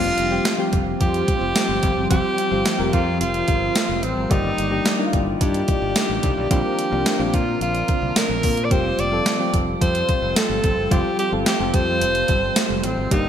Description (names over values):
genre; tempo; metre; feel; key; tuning
1980s-style pop; 109 BPM; 4/4; straight; unclear; A4 = 438 Hz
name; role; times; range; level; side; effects
bright alto saxophone; melody; 0.0-13.3 s; C4 to D5; -23 LUFS; equal; none
soft electric-piano-like synth keys; accompaniment; 0.0-13.3 s; F3 to D5; -25 LUFS; left 2 dB; chorus
granular cloud pad; sustained chords; 0.0-13.3 s; D3 to D5; -31 LUFS; equal; built-in reverb, lush chorus
modern bright fingered electric bass; bass; 0.0-13.3 s; F1 to Bb2; -27 LUFS; equal; none
clean 12-bit digital drum machine; drums; 0.2-13.2 s; hi-hat, kick drum, snare drum, tambourine; -22 LUFS; equal; gated reverb
mellow synth brass; stabs; 1.0-13.3 s; Eb3 to D5; -31 LUFS; right 1 dB; chorus, digital delay
room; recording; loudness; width
moderate lush hall reverb, RT60 2.0 s; bright 1980s-style digital production; -18 LUFS; side -9 dB against mid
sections
0.0-13.3 A section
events
none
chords
0.0 Fsus2; 4.3 Ebmaj7/G; 6.5 Bbadd9; 8.7 Fsus2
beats
0.45 1.00 1.55 | 2.11 2.66 3.21 3.76 | 4.31 4.86 5.41 5.96 | 6.51 7.06 7.61 8.16 | 8.71 9.26 9.81 10.36 | 10.91 11.46 12.01 12.56 | 13.12